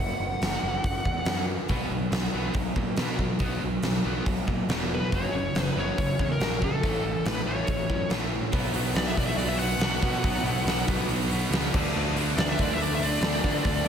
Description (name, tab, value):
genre	hard rock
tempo	140 BPM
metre	4/4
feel	straight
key	B minor from 8.5 s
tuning	A4 = 440 Hz
part	high-gain lead guitar	melody	0.0-1.5, 4.9-13.9 s	A4 to F#5	-31 LUFS	left 1 dB	distortion, slapback echo
part	fuzz picked electric bass	bass	0.0-13.9 s	E1 to D3	-31 LUFS	equal	overdrive
part	huge arena drum kit	drums	0.4-13.9 s	crash cymbal, hi-hat, kick drum, snare drum	-28 LUFS	equal	none
part	scooped high-gain guitar	riff	1.7-13.9 s	F#2 to D4	-32 LUFS	right 8 dB	distortion
part	tight distorted guitar	riff	1.7-13.9 s	F#2 to D4	-34 LUFS	left 8 dB	distortion
part	heavy high-gain guitar	riff	8.5-13.9 s	B2 to D4	-36 LUFS	equal	none
room	moderate lush hall reverb, RT60 1.9 s, studio reverb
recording	big arena sound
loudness	-24 LUFS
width	side -8 dB against mid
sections	0.0-8.5 A section; 8.5-13.9 B section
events	lead electric guitar solo 8.5-13.9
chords	0.0 N.C.; 1.7 B5; 5.1 F#; 6.8 A; 8.5 B5; 11.7 D5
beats	0.41 0.84 1.26 | 1.69 2.12 2.55 2.98 | 3.41 3.83 4.26 4.69 | 5.12 5.55 5.97 6.40 | 6.83 7.26 7.69 8.11 | 8.54 8.97 9.39 9.82 | 10.25 10.67 11.10 11.52 | 11.95 12.38 12.80 13.23 | 13.65